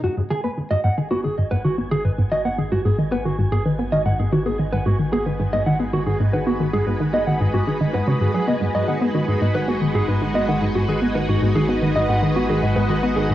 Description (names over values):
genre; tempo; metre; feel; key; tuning
ambient, sequencer-driven space music; 112 BPM; 4/4; straight; G# minor; A4 = 440 Hz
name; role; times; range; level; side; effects
string machine, full ensemble; sustained chords; 0.0-13.3 s; G#3 to D#5; -26 LUFS; equal; ensemble chorus, cassette tape
mellow electric guitar; arpeggios; 0.0-13.3 s; F#4 to F#5; -24 LUFS; right 1 dB; auto-pan, cassette tape, analog delay
resonant blip pluck; riff; 0.0-13.3 s; G#2 to B3; -20 LUFS; equal; chorus, cassette tape, analog delay
round analog bass; bass; 0.0-13.3 s; G#1; -33 LUFS; equal; none
wind-like tuned noise texture; texture; 0.6-13.3 s; G#5; -37 LUFS; right 1 dB; built-in reverb, cassette tape
room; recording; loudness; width
moderate spring reverb, RT60 1.1 s, digital ambience; home recording on cassette; -18 LUFS; side -13 dB against mid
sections
0.0-13.3 A section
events
fade-in on string machine 0.0-13.3; filter sweep on synth arpeggio sound 0.0-13.3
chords
0.0 G#m7